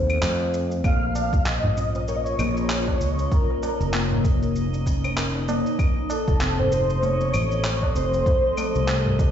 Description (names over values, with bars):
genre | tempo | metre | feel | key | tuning
organic downtempo | 97 BPM | 4/4 | swing 58% on 16ths | Bb harmonic minor | A4 = 440 Hz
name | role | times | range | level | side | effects
kalimba | arpeggios | 0.0-9.2 s | A3 to Db5 | -27 LUFS | left 2 dB | digital delay
fretless electric bass | bass | 0.0-9.3 s | F1 to F2 | -25 LUFS | equal | none
electronic claves, shaker and handclaps | drums | 0.1-9.3 s | none | -31 LUFS | equal | none
breathy flute-like synth lead | melody | 0.8-8.9 s | A4 to F5 | -28 LUFS | equal | ensemble chorus, ping-pong delay
granular cloud pad | sustained chords | 1.6-9.3 s | F3 to Db5 | -31 LUFS | equal | built-in reverb, sidechain pumping
electronic kick drum | drums | 0.8-9.3 s | none | -23 LUFS | equal | none
drifting glass-harmonics texture | texture | 1.9-9.3 s | Eb5 | -37 LUFS | right 1 dB | chorus, built-in reverb
tabla | percussion | 0.9-9.3 s | none | -33 LUFS | right 3 dB | none
room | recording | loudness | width
light reverb | played on a big sound system in a bare room, stone room reverb, nothing above 7.8 kHz | -20 LUFS | side -9 dB against mid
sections
0.0-9.3 A section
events
none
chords
0.0 F; 0.8 Bbm; 5.8 F